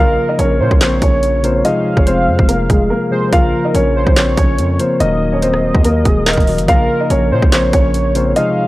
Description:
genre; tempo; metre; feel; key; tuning
hip hop, drill; 143 BPM; 4/4; half-time; Bb minor; A4 = 440 Hz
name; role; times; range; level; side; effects
dark concert grand piano; melody; 0.0-8.7 s; Ab3 to F5; -17 LUFS; equal; low-pass filter, tape echo
warm velvety synth lead; second line; 0.0-8.7 s; Bb4 to F5; -20 LUFS; equal; chorus, tape echo
mellow tine electric piano; accompaniment; 0.0-8.7 s; C3 to Bb4; -19 LUFS; left 2 dB; low-pass filter
distorted 808-style bass; bass; 0.0-8.3 s; Eb1 to Bb2; -17 LUFS; equal; distortion
drill drum kit; drums; 0.4-8.5 s; handclaps, hi-hat, kick drum, rim click, snare drum; -14 LUFS; equal; none
room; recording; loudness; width
little or no reverb; dry, gritty hardware recording, cassette tape; -11 LUFS; side -18 dB against mid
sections
0.0-8.7 A section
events
break 2.9-3.3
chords
0.0 Bbm; 1.6 Fm; 3.3 Bbm; 5.0 Ebm; 6.7 Bbm

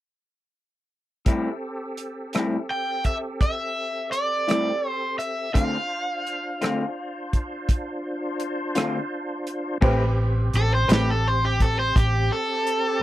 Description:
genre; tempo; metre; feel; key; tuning
slow blues; 56 BPM (dotted quarters); 12/8; straight; A minor; A4 = 443 Hz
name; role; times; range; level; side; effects
bright tonewheel organ; sustained chords; 1.2-13.0 s; C4 to C5; -32 LUFS; equal; slow rotary speaker, chorus vibrato
electric guitar through a small old amp; accompaniment; 1.3-11.1 s; A2 to B4; -24 LUFS; left 2 dB; harmonic tremolo
warm soul drum kit; drums; 1.3-12.8 s; crash cymbal, hi-hat, kick drum, rim click, snare drum; -22 LUFS; equal; none
cranked stack guitar; melody; 2.7-13.0 s; G4 to G5; -25 LUFS; equal; overdrive
clear upright piano; accompaniment; 9.8-13.0 s; G4 to C5; -31 LUFS; right 2 dB; none
hollow-body short-scale fingered electric bass; bass; 9.8-12.3 s; A1; -22 LUFS; equal; none
room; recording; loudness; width
little or no reverb; dry, close 1970s-style studio recording; -22 LUFS; side -14 dB against mid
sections
1.3-9.8 A section; 9.8-13.0 B section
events
overdriven electric guitar solo 9.8-13.0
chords
1.3 Am7; 5.6 Dm7; 9.8 Am9

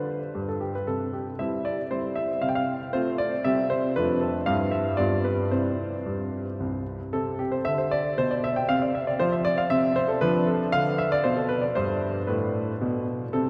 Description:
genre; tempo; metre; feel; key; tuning
classical-period piano sonatina; 116 BPM; 3/4; straight; C major; A4 = 440 Hz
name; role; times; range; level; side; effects
clear grand piano; solo; 0.0-13.5 s; C2 to G5; -26 LUFS; equal; none
room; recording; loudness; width
wet cathedral reverb, RT60 5.5 s; none; -26 LUFS; mono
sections
0.0-7.1 A section; 7.1-13.5 B section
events
none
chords
0.0 G; 0.9 C; 2.4 F/C; 3.5 C; 4.0 Dm/F; 4.5 C/G; 5.0 G7; 5.5 C; 7.1 Am11; 8.7 F5/C; 9.7 N.C.; 10.2 Dm; 11.8 G

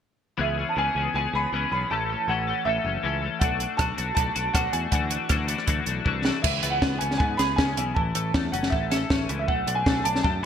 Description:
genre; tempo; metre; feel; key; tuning
indie rock; 158 BPM; 4/4; straight; unclear; A4 = 443 Hz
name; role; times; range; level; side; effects
warm upright piano; melody; 0.4-10.5 s; E5 to B5; -28 LUFS; right 2 dB; wide subtle chorus, ping-pong delay
twelve-string electric guitar; riff; 0.4-10.5 s; E3 to A4; -28 LUFS; left 7 dB; analog chorus
picked electric bass; bass; 0.4-10.5 s; F#1 to G#2; -30 LUFS; equal; none
compact cocktail drum kit; drums; 3.4-10.3 s; crash cymbal, hi-hat, kick drum, rim click, snare drum; -25 LUFS; equal; gated reverb
room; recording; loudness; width
moderate lush hall reverb, RT60 1.6 s, small room ambience; bright 1980s-style digital production; -22 LUFS; side -8 dB against mid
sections
0.4-6.4 A section; 6.4-10.5 B section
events
drum fill 6.1-6.4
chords
0.4 C#m7; 1.9 A; 3.4 Bm7; 4.9 Dadd9; 6.4 C#m7; 8.0 A; 9.5 Bm7

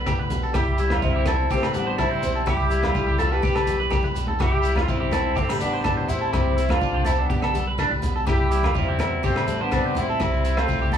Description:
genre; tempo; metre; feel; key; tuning
highlife guitar band; 124 BPM; 4/4; straight; C major; A4 = 441 Hz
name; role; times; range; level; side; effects
picked steel-string acoustic guitar; accompaniment; 0.0-11.0 s; A2 to G4; -31 LUFS; left 5 dB; none
electric guitar at the edge of break-up; arpeggios; 0.0-11.0 s; D4 to C5; -28 LUFS; right 5 dB; phaser
hollow-body short-scale fingered electric bass; bass; 0.0-11.0 s; A1 to E2; -26 LUFS; equal; none
crunchy breakbeat drum kit; drums; 0.1-11.0 s; hi-hat, kick drum, rim click; -27 LUFS; equal; none
agogo bells; percussion; 0.1-11.0 s; none; -34 LUFS; equal; none
shekere; percussion; 0.1-11.0 s; none; -37 LUFS; left 3 dB; none
congas; percussion; 0.3-11.0 s; none; -33 LUFS; left 1 dB; none
bright horn section; melody; 0.5-11.0 s; G3 to B4; -25 LUFS; left 1 dB; none
room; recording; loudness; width
light reverb; band playing live in one room, small room ambience; -20 LUFS; side -8 dB against mid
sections
0.0-11.0 A section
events
drum fill 3.8-4.4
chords
0.0 G/B; 0.5 C; 1.5 Am7; 2.5 C; 3.4 G/B; 4.4 C; 5.4 Am7; 6.3 C; 7.3 G/B; 8.3 C; 9.2 Am7; 10.2 C

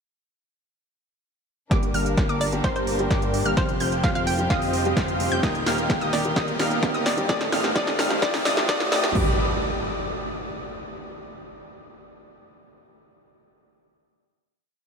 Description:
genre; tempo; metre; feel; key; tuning
EDM, festival progressive house; 129 BPM; 4/4; straight; G minor; A4 = 440 Hz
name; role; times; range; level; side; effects
felt-muted upright piano; accompaniment; 1.7-9.3 s; G2 to G4; -32 LUFS; left 1 dB; none
warm studio string section; sustained chords; 1.7-9.4 s; Eb3 to B4; -34 LUFS; left 1 dB; none
wide unison pluck; arpeggios; 1.7-9.3 s; C6 to G6; -32 LUFS; equal; vintage 12-bit sampler grit, sidechain pumping, analog delay
dense compressed supersaw; riff; 1.7-9.3 s; A3 to G5; -29 LUFS; equal; sidechain pumping, low-pass filter, analog delay
fat analog bass; bass; 1.7-9.4 s; Eb1 to A2; -31 LUFS; equal; sidechain pumping
big-room dance drum kit; drums; 1.7-9.3 s; hi-hat, kick drum, toms; -25 LUFS; equal; overdrive
big-room dance drum kit; drums; 1.7-9.1 s; hi-hat, snare drum; -29 LUFS; equal; overdrive
riser and impact; sound effects; 5.5-11.0 s; none; -32 LUFS; right 1 dB; none
hollow square pluck; melody; 2.4-9.1 s; C5 to G5; -30 LUFS; left 1 dB; chorus, analog delay
room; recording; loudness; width
wet huge ambient reverb, RT60 6.5 s; dreamy mix soaked in reverb, high-pass filter; -21 LUFS; side -5 dB against mid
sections
1.7-9.2 build; 9.2-11.0 final chord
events
build-up 1.7-9.2; drum fill 1.7-9.2; filter sweep on supersaw synth 1.7-9.2; filter sweep 1.7-9.2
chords
1.7 Gm; 3.6 Fsus2; 5.4 Eb; 7.3 Adim; 9.2 G

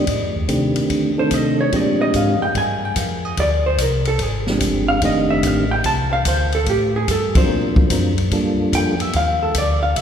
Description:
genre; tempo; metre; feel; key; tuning
soul jazz organ trio; 146 BPM; 4/4; swing 66% on 8ths; unclear; A4 = 440 Hz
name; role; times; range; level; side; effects
percussive tonewheel organ; melody; 0.0-9.0 s; Eb3 to Bb4; -20 LUFS; right 1 dB; slow rotary speaker, chorus vibrato
hollow-body jazz guitar; accompaniment; 0.0-10.0 s; G4 to A5; -21 LUFS; equal; none
mellow tonewheel organ; bass; 0.0-10.0 s; F1 to D3; -22 LUFS; equal; slow rotary speaker
open jazz drum kit; drums; 0.1-10.0 s; hi-hat, kick drum, ride cymbal, snare drum; -23 LUFS; left 1 dB; none
room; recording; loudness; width
wet church reverb, RT60 2.9 s; recorded in a church or concert hall; -16 LUFS; side -8 dB against mid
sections
0.0-10.0 A section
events
hollow-body jazz guitar solo 0.0-10.0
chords
0.0 F13; 1.7 Bb13; 5.0 F13; 6.7 Gsus4; 7.5 D7alt; 8.3 Gm7

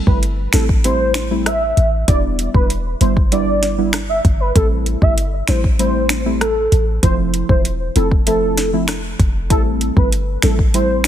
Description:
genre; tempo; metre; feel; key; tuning
dancehall; 97 BPM; 4/4; straight; A minor; A4 = 438 Hz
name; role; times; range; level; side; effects
deep mellow chord stab; accompaniment; 0.0-11.1 s; F3 to E4; -22 LUFS; right 2 dB; chorus
warm velvety synth lead; melody; 0.1-11.1 s; A4 to E5; -20 LUFS; equal; chorus, tape echo
clean 808-style bass; bass; 0.1-11.1 s; E1 to A1; -19 LUFS; equal; none
afro-pop drum kit; drums; 0.1-11.1 s; finger snaps, hi-hat, kick drum, rim click, snare drum; -16 LUFS; equal; soft clipping on snare
room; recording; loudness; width
digital ambience; dense, heavily limited modern master; -14 LUFS; side -11 dB against mid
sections
0.0-11.1 A section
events
none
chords
0.0 Am7; 2.1 Em7; 4.6 Am7; 7.0 Fmaj7; 9.5 Am7

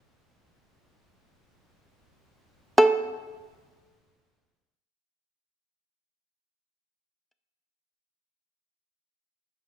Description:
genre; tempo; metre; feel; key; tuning
japanese traditional, Japanese chamber music; free time; none; none; unclear; A4 = 437 Hz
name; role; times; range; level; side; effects
shamisen; solo; 2.8-7.3 s; A4; -18 LUFS; right 1 dB; none
room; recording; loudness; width
light reverb; none; -20 LUFS; side -14 dB against mid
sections
0.0-2.8 A section; 2.8-6.2 B section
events
slowing down 0.0-2.8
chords
none

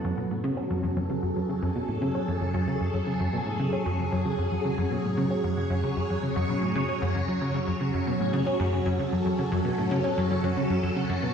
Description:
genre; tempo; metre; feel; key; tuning
ambient; 114 BPM; 4/4; straight; F# minor; A4 = 439 Hz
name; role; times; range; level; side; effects
phased string machine; sustained chords; 0.0-11.3 s; F#3 to C#5; -28 LUFS; equal; ensemble chorus, phaser
Celtic harp; arpeggios; 0.0-2.4 s; A3 to A4; -42 LUFS; right 1 dB; none
plucky analog bass; riff; 0.0-11.3 s; F#2 to C#4; -27 LUFS; equal; wide subtle chorus, analog delay
room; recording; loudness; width
wet concert hall reverb, RT60 2.0 s, digital ambience; played on a big sound system in a bare room, stone room reverb; -25 LUFS; side -7 dB against mid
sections
0.0-11.3 A section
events
none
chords
0.0 F#m

